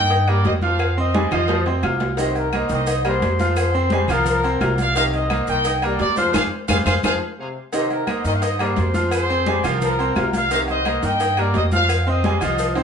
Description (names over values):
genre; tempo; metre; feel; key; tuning
latin, salsa; 173 BPM; 4/4; straight; C minor; A4 = 440 Hz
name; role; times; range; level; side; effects
mellow trumpet section; melody; 0.0-12.8 s; F4 to G5; -22 LUFS; left 1 dB; plate reverb, analog delay
mellow trombone section; second line; 0.0-12.8 s; C3 to G3; -28 LUFS; left 2 dB; none
bright baby grand piano; accompaniment; 0.0-12.8 s; Eb3 to F6; -24 LUFS; right 2 dB; none
upright bass; bass; 0.0-12.8 s; C2 to G2; -23 LUFS; equal; none
agogo bells and timbales; percussion; 0.1-12.8 s; none; -29 LUFS; right 5 dB; none
congas; percussion; 0.1-12.8 s; none; -28 LUFS; left 2 dB; none
cowbell; percussion; 0.1-12.8 s; none; -30 LUFS; left 8 dB; none
claves; percussion; 0.3-12.6 s; none; -32 LUFS; left 6 dB; none
maracas; percussion; 2.2-12.8 s; none; -37 LUFS; right 2 dB; none
room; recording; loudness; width
wet studio reverb, RT60 0.6 s; heard from further back in the room, nothing above 10.8 kHz; -17 LUFS; side -7 dB against mid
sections
0.0-7.7 A section; 7.7-12.8 A section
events
drum fill 1.1-2.2, 6.9-7.7; band accent 6.3-7.7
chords
0.0 Cm7; 0.8 Fm; 2.2 Cm7; 3.6 Fm; 5.0 Cm7; 6.3 Fm; 7.7 Cm7; 9.1 Fm; 10.5 Cm7; 11.9 Fm